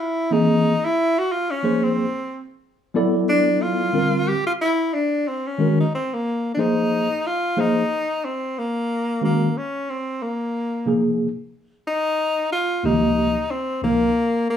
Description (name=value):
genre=hip hop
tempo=91 BPM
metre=4/4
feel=swing 59% on 16ths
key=F minor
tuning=A4 = 440 Hz
part: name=breathy tenor saxophone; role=melody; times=0.0-14.6 s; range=Bb3 to G4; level=-22 LUFS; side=left 1 dB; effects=plate reverb
part: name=tine electric piano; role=accompaniment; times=0.3-14.1 s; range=Db2 to D5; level=-19 LUFS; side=equal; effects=overdrive, fast stereo tremolo
room=moderate studio reverb, RT60 0.6 s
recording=rough home demo mix, small room ambience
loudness=-19 LUFS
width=side -9 dB against mid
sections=0.0-6.6 A section; 6.6-14.6 B section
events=tenor saxophone solo 0.0-6.6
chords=0.0 C7alt; 1.3 Fm7; 2.6 D; 3.9 Gm7; 5.3 Gbadd9; 6.6 Fm7; 9.2 Ebm7; 10.5 Ab69; 11.9 Dbmaj9